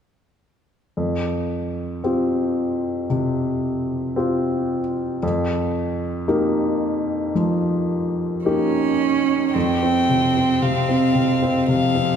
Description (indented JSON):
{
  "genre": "neoclassical piano and strings",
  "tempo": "56 BPM",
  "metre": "4/4",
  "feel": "rubato",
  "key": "unclear",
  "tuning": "A4 = 438 Hz",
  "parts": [
    { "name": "warm upright piano", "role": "accompaniment", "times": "1.0-12.2 s", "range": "F2 to G4", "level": "-20 LUFS", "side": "left 1 dB", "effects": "none" },
    { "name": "warm cello", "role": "second line", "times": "8.4-12.2 s", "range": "F3 to Db4", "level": "-22 LUFS", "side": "right 8 dB", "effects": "none" },
    { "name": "rich violin", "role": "melody", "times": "9.5-12.2 s", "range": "F5 to G5", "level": "-23 LUFS", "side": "left 3 dB", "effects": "none" }
  ],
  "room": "moderate church reverb, RT60 3.5 s",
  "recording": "recorded in a church or concert hall",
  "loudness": "-19 LUFS",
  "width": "side -8 dB against mid",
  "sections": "1.0-9.5 A section; 9.5-12.2 B section",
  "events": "none",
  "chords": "1.0 Fsus2; 5.2 Ebadd9/F; 9.5 Fsus2"
}